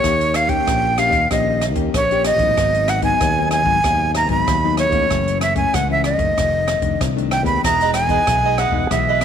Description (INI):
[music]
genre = samba and choro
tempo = 95 BPM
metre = 4/4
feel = straight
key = Eb minor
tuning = A4 = 441 Hz
[part]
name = breathy bright jazz flute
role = melody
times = 0.0-9.2 s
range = Db5 to Cb6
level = -18 LUFS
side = right 1 dB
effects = none
[part]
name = nylon-string guitar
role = accompaniment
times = 0.0-9.2 s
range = F2 to G4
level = -24 LUFS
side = left 12 dB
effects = none
[part]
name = fingered electric bass with an envelope filter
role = bass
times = 0.0-9.2 s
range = E1 to Eb2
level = -23 LUFS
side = equal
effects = none
[part]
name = open jazz drum kit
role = drums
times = 0.0-9.2 s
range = hi-hat, kick drum, rim click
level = -24 LUFS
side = right 1 dB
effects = none
[part]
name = cavaquinho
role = accompaniment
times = 7.7-9.2 s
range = E4 to D#5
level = -22 LUFS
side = right 13 dB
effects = none
[sound]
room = light reverb, studio reverb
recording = 1960s-style stereo with parts hard left and right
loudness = -15 LUFS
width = side -8 dB against mid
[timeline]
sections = 0.0-9.2 A section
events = none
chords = 0.0 Eb7; 2.6 Abm7; 5.1 Gbm7; 6.4 F6; 7.6 Emaj7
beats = | 0.05 0.68 1.31 1.94 | 2.58 3.21 3.84 4.47 | 5.11 5.74 6.37 7.01 | 7.64 8.27 8.91